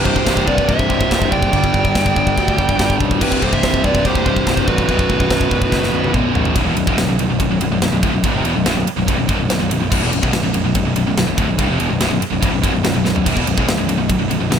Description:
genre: heavy metal.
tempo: 143 BPM.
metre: 4/4.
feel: straight.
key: B phrygian.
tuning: A4 = 437 Hz.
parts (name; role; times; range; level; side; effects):
high-gain lead guitar; melody; 0.0-6.1 s; B4 to G5; -21 LUFS; right 1 dB; distortion.
dark smooth lead guitar; second line; 0.0-6.1 s; F#4 to D5; -25 LUFS; right 5 dB; overdrive.
fuzz guitar; riff; 0.0-14.6 s; B1 to G3; -23 LUFS; equal; distortion.
scooped high-gain guitar; riff; 0.0-14.6 s; B1 to G3; -22 LUFS; right 12 dB; distortion.
tight distorted guitar; riff; 0.0-14.6 s; B1 to G3; -22 LUFS; left 12 dB; distortion.
fuzz picked electric bass; bass; 0.0-14.6 s; B0 to D2; -21 LUFS; equal; overdrive.
tight metal drum kit; drums; 0.1-14.6 s; china cymbal, crash cymbal, kick drum, ride cymbal, snare drum, toms; -20 LUFS; equal; none.
room: small room ambience.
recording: none.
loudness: -14 LUFS.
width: side -8 dB against mid.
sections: 0.0-6.6 A section; 6.6-14.6 B section.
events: drum fill 5.7-6.6, 13.0.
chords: 0.0 C; 1.5 G5; 3.2 C5; 4.9 B5.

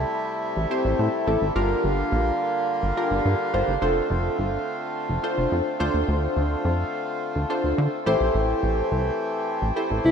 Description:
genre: pop.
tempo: 106 BPM.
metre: 4/4.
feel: straight.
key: G dorian.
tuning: A4 = 440 Hz.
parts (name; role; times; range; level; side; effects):
accordion; sustained chords; 0.0-10.1 s; C3 to G4; -26 LUFS; equal; none.
plucky analog bass; bass; 0.0-10.1 s; F1 to D3; -25 LUFS; equal; none.
funky polysynth comp; accompaniment; 0.7-10.1 s; C4 to C5; -26 LUFS; equal; chorus.
warm alto saxophone; melody; 10.0-10.1 s; E4; -15 LUFS; left 1 dB; none.
room: wet lush hall reverb, RT60 2.7 s.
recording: rough home demo mix.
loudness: -22 LUFS.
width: side -7 dB against mid.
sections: 0.0-10.1 A section.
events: none.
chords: 0.0 Am7; 1.6 Gm7; 3.8 F6; 5.8 Dm7; 8.1 Am7.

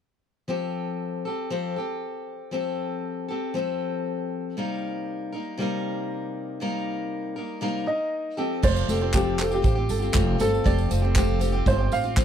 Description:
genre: acoustic pop.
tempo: 118 BPM.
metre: 4/4.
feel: straight.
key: F mixolydian.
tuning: A4 = 442 Hz.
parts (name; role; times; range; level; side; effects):
picked steel-string acoustic guitar; accompaniment; 0.5-12.2 s; C3 to Bb4; -28 LUFS; left 3 dB; none.
dark upright piano; melody; 7.9-12.2 s; G4 to F5; -27 LUFS; right 1 dB; none.
flamenco guitar; arpeggios; 8.6-12.0 s; G4 to D5; -34 LUFS; right 8 dB; none.
upright bass; bass; 8.6-12.2 s; F1 to A1; -25 LUFS; right 1 dB; none.
unplugged drum kit; drums; 8.6-12.2 s; crash cymbal, handclaps, kick drum, tambourine; -24 LUFS; right 1 dB; none.
tambourine; percussion; 8.6-12.2 s; none; -42 LUFS; left 16 dB; none.
room: small room ambience.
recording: dry, close 1970s-style studio recording.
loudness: -24 LUFS.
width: side -9 dB against mid.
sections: 0.5-8.6 A section; 8.6-12.2 B section.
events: none.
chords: 0.5 Fadd9; 4.6 Cm7; 8.4 Fadd9.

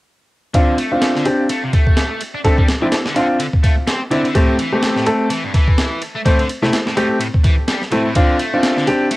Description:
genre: breakbeat, breaks.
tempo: 126 BPM.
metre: 4/4.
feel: swing 57% on 16ths.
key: D minor.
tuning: A4 = 440 Hz.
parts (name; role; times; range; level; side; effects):
distorted electric guitar; riff; 0.5-9.2 s; G2 to D4; -23 LUFS; equal; overdrive, low-pass filter, cassette tape, tape echo.
bright grand piano; stabs; 0.5-9.1 s; A3 to C5; -17 LUFS; equal; vintage 12-bit sampler grit, low-pass filter, cassette tape, tape echo.
breakbeat sampler-style drum kit; drums; 0.5-9.2 s; kick drum, ride cymbal, snare drum; -16 LUFS; equal; cassette tape.
room: light reverb.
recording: home recording on cassette.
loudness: -14 LUFS.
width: side -19 dB against mid.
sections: 0.5-9.2 A section.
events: filter sweep on grand piano 0.5-9.2.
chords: 0.5 Dm7; 4.4 Am7; 8.2 Dm7.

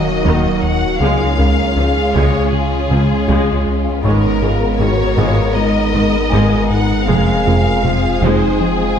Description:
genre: cinematic, hybrid orchestral and electronic film score.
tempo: 79 BPM.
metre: 4/4.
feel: straight.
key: unclear.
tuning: A4 = 440 Hz.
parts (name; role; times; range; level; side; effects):
warm symphonic violin section; melody; 0.0-9.0 s; Ab4 to Gb5; -21 LUFS; left 2 dB; none.
warm symphonic violin section; second line; 0.0-9.0 s; Bb3 to Bb4; -23 LUFS; left 2 dB; none.
warm studio viola section; accompaniment; 0.0-8.6 s; Eb3 to Ab3; -23 LUFS; right 2 dB; none.
mellow French horn section; sustained chords; 0.0-9.0 s; Eb4 to Bb4; -22 LUFS; equal; none.
warbly tape-like pad; sustained chords; 0.0-9.0 s; Gb3 to Db5; -21 LUFS; equal; chorus, built-in reverb.
thumb-piano-like synth pluck; arpeggios; 0.0-8.5 s; Db3 to Ab4; -25 LUFS; left 3 dB; chorus, digital delay.
round analog bass; riff; 0.0-8.8 s; Db2 to Ab3; -19 LUFS; left 2 dB; none.
punchy sub bass; bass; 0.0-9.0 s; Eb1 to Db2; -22 LUFS; equal; none.
felt-muted upright piano; texture; 0.0-9.0 s; Eb4 to Db6; -32 LUFS; left 2 dB; none.
rich symphonic cello section; bass; 0.2-8.3 s; Db2 to Ab2; -24 LUFS; right 3 dB; none.
warm studio double bass section; bass; 0.2-8.3 s; F1 to Eb2; -23 LUFS; right 3 dB; none.
room: wet scoring stage reverb, RT60 1.7 s.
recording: heard from further back in the room.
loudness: -12 LUFS.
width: side -8 dB against mid.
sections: 0.0-9.0 A section.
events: none.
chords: 0.0 Ebm; 1.0 Db; 4.0 Abmadd9; 7.1 Fm.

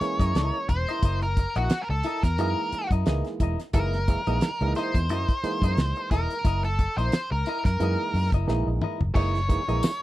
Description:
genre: funk.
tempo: 89 BPM.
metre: 4/4.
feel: swing 56% on 16ths.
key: F# mixolydian.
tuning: A4 = 440 Hz.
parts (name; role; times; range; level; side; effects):
octave-fuzz lead guitar; melody; 0.0-10.0 s; F#4 to C#5; -29 LUFS; equal; distortion.
clean electric guitar; accompaniment; 0.0-9.9 s; E4 to D#5; -34 LUFS; left 3 dB; none.
mellow clav; stabs; 0.0-9.9 s; E3 to E4; -32 LUFS; right 4 dB; none.
vintage muted fingered electric bass; bass; 0.0-9.8 s; E1 to F#2; -26 LUFS; equal; none.
damped 70s drum kit; drums; 0.0-10.0 s; crash cymbal, hi-hat, kick drum, snare drum, toms; -25 LUFS; equal; none.
tambourine; percussion; 9.8-10.0 s; none; -40 LUFS; left 4 dB; none.
room: small room reverb.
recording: dry, close 1970s-style studio recording, faint mains hum.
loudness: -23 LUFS.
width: side -15 dB against mid.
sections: 0.0-10.0 A section.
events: lead electric guitar solo 0.0-10.0; drum fill 8.5-9.2.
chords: 0.0 F#13.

